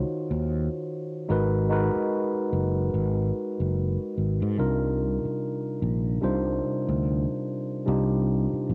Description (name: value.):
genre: R&B, neo-soul.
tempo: 73 BPM.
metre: 4/4.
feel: swing 60% on 16ths.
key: unclear.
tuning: A4 = 440 Hz.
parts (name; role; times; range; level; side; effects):
tine electric piano; accompaniment; 0.0-8.7 s; C3 to Db5; -30 LUFS; equal; cassette tape.
fretless electric bass; bass; 0.3-8.7 s; Gb1 to Ab2; -28 LUFS; equal; none.
room: little or no reverb.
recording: home recording on cassette.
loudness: -27 LUFS.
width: mono.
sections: 0.0-4.6 A section; 4.6-8.7 B section.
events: none.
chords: 0.0 Ebm9; 1.3 Abm9; 4.6 Cm11.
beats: 0.47 | 1.29 2.11 2.93 3.76 | 4.58 5.40 6.22 7.04 | 7.87 8.69.